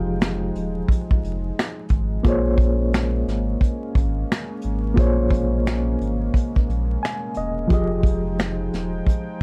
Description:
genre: lo-fi hip hop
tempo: 88 BPM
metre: 4/4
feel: swing 65% on 16ths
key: Bb minor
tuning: A4 = 445 Hz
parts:
  - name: reed electric piano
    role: accompaniment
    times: 0.0-9.4 s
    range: F3 to Ab5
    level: -28 LUFS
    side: equal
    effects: overdrive, fast tremolo, low-pass filter
  - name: warm analog pad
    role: sustained chords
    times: 0.0-9.4 s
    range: F3 to G5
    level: -34 LUFS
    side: equal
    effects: chorus, low-pass filter
  - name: saturated sub bass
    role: bass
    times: 0.0-9.0 s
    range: Eb1 to Bb1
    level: -27 LUFS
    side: equal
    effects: none
  - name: vintage brush drum kit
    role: drums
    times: 0.2-9.4 s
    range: finger snaps, hi-hat, kick drum, snare drum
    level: -22 LUFS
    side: equal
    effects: none
room: light reverb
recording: vinyl crackle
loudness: -22 LUFS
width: mono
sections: 0.0-9.4 A section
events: none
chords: 0.0 Fm9; 2.2 Bbm9; 7.7 Fm9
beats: 0.20 0.88 1.56 | 2.25 2.93 3.61 4.29 | 4.97 5.66 6.34 7.02 | 7.70 8.38 9.06

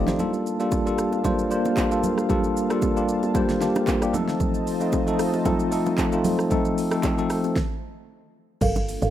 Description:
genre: amapiano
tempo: 114 BPM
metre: 4/4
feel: swing 55% on 16ths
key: unclear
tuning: A4 = 440 Hz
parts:
  - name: bell-like tine electric piano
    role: accompaniment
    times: 0.0-7.6 s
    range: F3 to F5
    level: -22 LUFS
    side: left 1 dB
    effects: medium stereo tremolo
  - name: warm analog pad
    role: sustained chords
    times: 0.2-9.1 s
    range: G3 to A5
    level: -33 LUFS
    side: right 2 dB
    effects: chorus, sidechain pumping
  - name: deep house drum kit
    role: drums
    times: 0.1-9.1 s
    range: crash cymbal, handclaps, hi-hat, kick drum, rim click, shaker, snare drum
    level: -28 LUFS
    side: right 1 dB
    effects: overdrive
  - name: bongos and congas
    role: percussion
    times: 0.1-8.9 s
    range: none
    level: -30 LUFS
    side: right 3 dB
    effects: none
  - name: folk marimba with medium mallets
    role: stabs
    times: 8.6-9.1 s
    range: A4 to F5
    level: -26 LUFS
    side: right 2 dB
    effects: none
  - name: woody log drum bass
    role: bass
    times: 8.6-9.1 s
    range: G1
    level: -25 LUFS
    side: right 1 dB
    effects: none
room: light reverb, digital ambience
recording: rough home demo mix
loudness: -21 LUFS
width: side -12 dB against mid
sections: 0.0-8.6 A section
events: break 0.2-0.7; stop 7.6-8.6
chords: 0.2 Gm9; 4.1 F7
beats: | 0.19 0.72 1.25 1.77 | 2.30 2.82 3.35 3.88 | 4.40 4.93 5.46 5.98 | 6.51 7.03 7.56 8.09 | 8.61

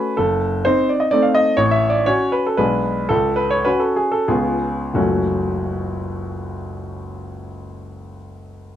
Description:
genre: classical, romantic triple-time dance for piano with dotted rhythms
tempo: 84-131 BPM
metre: 3/4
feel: rubato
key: F# minor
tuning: A4 = 440 Hz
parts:
  - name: clear grand piano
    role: solo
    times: 0.0-8.8 s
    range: F#1 to E#5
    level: -18 LUFS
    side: equal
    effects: none
room: moderate large studio reverb, RT60 0.9 s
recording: dark, warm production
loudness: -16 LUFS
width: side -10 dB against mid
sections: 0.0-5.0 A section; 5.0-8.8 B section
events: slowing down 0.9-5.0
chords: 0.2 F#dim7; 1.6 F#m/A; 2.6 G#dim/B; 3.1 F#5/C#; 4.3 C#7; 5.0 F#m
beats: | 0.17 0.65 1.13 | 1.59 2.08 2.58 | 3.09 3.65 4.30 | 4.97 5.61 6.26 | 6.88 7.52 8.19

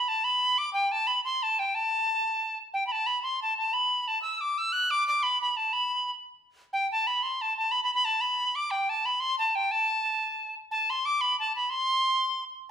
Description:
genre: celtic folk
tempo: 121 BPM (dotted quarters)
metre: 6/8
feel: straight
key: A dorian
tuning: A4 = 440 Hz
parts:
  - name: bright reedy wooden whistle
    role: solo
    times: 0.0-12.4 s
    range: G5 to F#6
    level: -25 LUFS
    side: equal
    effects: none
room: moderate large studio reverb, RT60 1.1 s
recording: band playing live in one room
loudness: -25 LUFS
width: side -8 dB against mid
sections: 0.0-2.7 A section; 2.7-10.7 A section; 10.7-12.7 B section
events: none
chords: none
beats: 0.24 | 0.74 1.24 | 1.74 2.23 | 2.73 3.23 | 3.73 4.23 | 4.73 5.23 | 5.72 6.22 | 6.72 7.22 | 7.72 8.21 | 8.71 9.21 | 9.71 10.20 | 10.70 11.19 | 11.69 12.18

